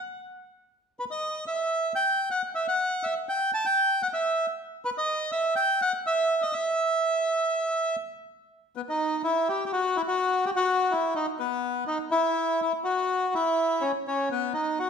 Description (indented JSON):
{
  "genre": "tango",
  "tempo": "124 BPM",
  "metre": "4/4",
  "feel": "rubato",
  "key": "E harmonic minor",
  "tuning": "A4 = 437 Hz",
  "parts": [
    { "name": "bandoneon", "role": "solo", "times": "1.0-14.9 s", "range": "B3 to A5", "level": "-24 LUFS", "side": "equal", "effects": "none" }
  ],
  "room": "wet recital hall reverb, RT60 1.4 s",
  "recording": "recorded in a church or concert hall",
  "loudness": "-24 LUFS",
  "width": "side -6 dB against mid",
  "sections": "0.0-8.5 A section; 8.5-14.9 A section",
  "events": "none",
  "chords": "none"
}